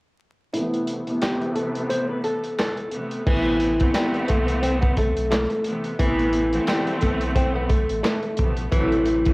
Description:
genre	hip hop, boom-bap hip-hop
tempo	88 BPM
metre	4/4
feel	swing 57% on 16ths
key	A minor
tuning	A4 = 439 Hz
part	flamenco guitar	melody	0.5-9.3 s	E3 to C5	-24 LUFS	equal	high-pass filter, low-pass filter, cassette tape, analog delay
part	clear symphonic string section	accompaniment	0.5-9.3 s	C3 to C4	-27 LUFS	equal	cassette tape, high-pass filter, low-pass filter
part	crunchy breakbeat drum kit	drums	0.5-9.3 s	crash cymbal, handclaps, hi-hat, kick drum, snare drum	-24 LUFS	equal	vintage 12-bit sampler grit, cassette tape
part	warm sub bass	bass	3.3-9.3 s	A1 to C2	-27 LUFS	equal	none
room	little or no reverb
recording	home recording on cassette, vinyl crackle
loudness	-20 LUFS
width	side -24 dB against mid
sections	0.5-3.3 A section; 3.3-9.3 B section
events	kick muted 0.5-3.3; filter sweep 0.5-3.3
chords	0.5 Amadd9; 8.7 Am6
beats	| 0.54 1.22 1.90 2.59 | 3.27 3.95 4.63 5.31 | 6.00 6.68 7.36 8.04 | 8.72

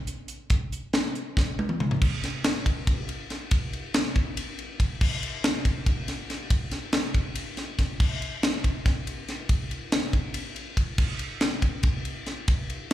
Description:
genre	rock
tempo	281 BPM (eighths)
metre	7/8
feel	straight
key	none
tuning	none
part	crisp fusion drum kit	drums	0.1-12.9 s	crash cymbal, hi-hat, kick drum, ride cymbal, snare drum, toms	-25 LUFS	equal	none
room	moderate lush hall reverb, RT60 2.0 s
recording	live gig heard through the venue's PA, club reverb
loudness	-25 LUFS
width	side -13 dB against mid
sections	0.0-2.0 A section; 2.0-12.9 B section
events	drum fill 1.4-2.0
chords	none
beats	0.07 0.29 | 0.51 0.72 0.94 1.15 1.37 1.58 1.80 | 2.01 2.23 2.44 2.66 2.87 3.08 3.30 | 3.51 3.73 3.94 4.16 4.37 4.58 4.80 | 5.01 5.22 5.44 5.65 5.86 6.08 6.29 | 6.50 6.72 6.93 7.14 7.36 7.57 7.79 | 8.00 8.21 8.43 8.64 8.85 9.07 9.28 | 9.49 9.71 9.92 10.13 10.35 10.56 10.77 | 10.99 11.20 11.41 11.63 11.84 12.06 12.27 | 12.48 12.70 12.91

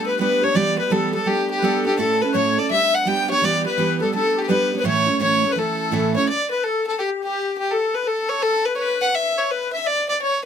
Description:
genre	celtic folk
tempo	168 BPM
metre	4/4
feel	swing 64% on 8ths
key	A mixolydian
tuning	A4 = 441 Hz
part	warm fiddle	melody	0.0-10.4 s	G4 to G5	-20 LUFS	left 1 dB	none
part	accordion	second line	0.0-10.3 s	G4 to G5	-25 LUFS	left 5 dB	light tremolo tuning
part	picked steel-string acoustic guitar	accompaniment	0.0-6.3 s	A2 to A4	-22 LUFS	right 5 dB	none
room	little or no reverb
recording	close, detailed microphones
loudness	-18 LUFS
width	side -8 dB against mid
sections	0.0-6.3 A section; 6.3-10.5 A section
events	none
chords	0.0 G; 0.6 Em; 1.3 G; 2.0 A; 2.7 G; 3.4 Em; 4.1 G; 4.9 A; 6.3 N.C.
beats	0.19 | 0.55 0.91 1.27 1.63 | 1.99 2.34 2.70 3.06 | 3.42 3.78 4.13 4.49 | 4.85 5.21 5.57 5.92 | 6.28 6.64 7.00 7.36 | 7.71 8.07 8.43 8.79 | 9.14 9.50 9.86 10.22

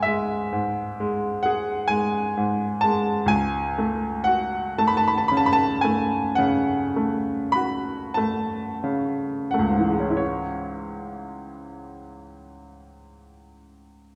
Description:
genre	classical, romantic nocturne for solo piano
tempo	27-44 BPM (dotted quarters)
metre	12/8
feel	rubato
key	C# minor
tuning	A4 = 440 Hz
part	bright baby grand piano	solo	0.0-14.2 s	C#2 to B5	-24 LUFS	equal	none
room	wet recital hall reverb, RT60 1.4 s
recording	none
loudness	-24 LUFS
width	mono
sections	0.0-10.2 A section; 10.2-14.2 B section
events	slowing down 0.0-10.2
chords	0.0 C#m; 3.3 F#m/C#; 10.2 C#m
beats	0.53 1.90 | 3.30 4.78 6.39 8.17 | 10.20 11.97 13.78

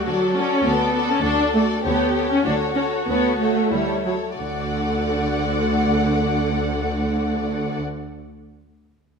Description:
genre	quick classical-period movement for symphony orchestra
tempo	89-105 BPM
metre	4/4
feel	straight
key	D major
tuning	A4 = 440 Hz
part	dark studio violin section	melody	0.0-7.8 s	E4 to F#5	-26 LUFS	left 5 dB	none
part	rich studio violin section	second line	0.0-7.8 s	F#4 to D5	-27 LUFS	left 3 dB	none
part	warm studio viola section	accompaniment	0.0-7.8 s	D3 to D4	-22 LUFS	right 1 dB	none
part	warm studio cello section	bass	0.1-7.8 s	D2	-26 LUFS	right 2 dB	none
part	rich studio double bass section	bass	1.9-7.8 s	D2	-29 LUFS	right 3 dB	none
room	moderate scoring stage reverb, RT60 1.5 s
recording	minimal, uncompressed stereo recording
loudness	-19 LUFS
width	side -5 dB against mid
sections	0.0-4.4 A section; 4.4-7.0 B section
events	slowing down 0.0-4.4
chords	0.0 D; 1.8 A7/D; 4.4 D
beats	0.07 0.65 1.23 | 1.83 2.45 3.07 3.71 | 4.38 5.04 5.70 6.36

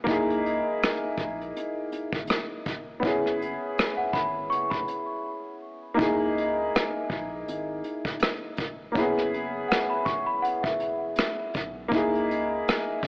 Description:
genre	lo-fi hip hop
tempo	81 BPM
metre	4/4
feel	swing 56% on 16ths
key	C# dorian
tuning	A4 = 440 Hz
part	clear upright piano	accompaniment	0.0-13.1 s	A#3 to G#4	-27 LUFS	equal	low-pass filter
part	soft dub sub bass	bass	0.1-13.1 s	E1 to C#2	-46 LUFS	equal	none
part	vintage brush drum kit	drums	0.1-13.1 s	hi-hat, kick drum, rim click	-28 LUFS	equal	none
part	celesta	second line	4.0-11.7 s	E5 to C#6	-29 LUFS	equal	low-pass filter, analog delay
room	moderate plate reverb, RT60 3.5 s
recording	cassette tape, AM radio sound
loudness	-25 LUFS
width	side -28 dB against mid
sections	0.0-6.0 A section; 6.0-13.1 B section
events	break 5.3-6.0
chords	0.1 C#m69; 3.0 F#7sus4; 6.0 C#m69; 9.0 F#7sus4; 11.9 C#m69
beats	| 0.07 0.81 1.55 2.29 | 3.03 3.77 4.51 5.25 | 5.99 6.74 7.48 8.22 | 8.96 9.70 10.44 11.18 | 11.92 12.66

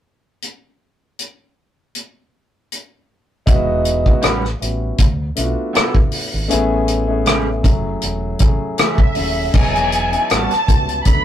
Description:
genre	lush 1970s-style soul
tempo	79 BPM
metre	4/4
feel	swing 54% on 16ths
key	E major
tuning	A4 = 440 Hz
part	warm soul drum kit	drums	0.4-11.2 s	crash cymbal, hi-hat, kick drum, rim click	-16 LUFS	equal	none
part	warm grand piano	accompaniment	3.5-11.2 s	F#3 to A4	-21 LUFS	left 1 dB	none
part	deep dub fingered electric bass	bass	3.5-11.2 s	D#1 to D2	-23 LUFS	equal	none
part	electric guitar through a small old amp	riff	4.2-10.5 s	E3 to B4	-21 LUFS	right 3 dB	none
part	dark studio violin section	melody	8.8-11.2 s	E5 to B5	-19 LUFS	equal	none
room	moderate booth ambience, RT60 0.2 s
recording	rough rehearsal-room recording, tube saturation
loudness	-14 LUFS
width	side -11 dB against mid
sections	0.4-3.5 A section; 3.5-9.5 B section; 9.5-11.2 C section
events	none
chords	0.4 N.C.; 3.5 Emaj7; 4.2 A13; 5.0 D69; 6.5 Amaj7; 7.6 F#m9; 9.5 Emaj7; 10.3 A13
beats	| 0.43 1.19 1.95 2.71 | 3.47 4.23 4.99 5.75 | 6.51 7.27 8.03 8.79 | 9.54 10.30 11.06

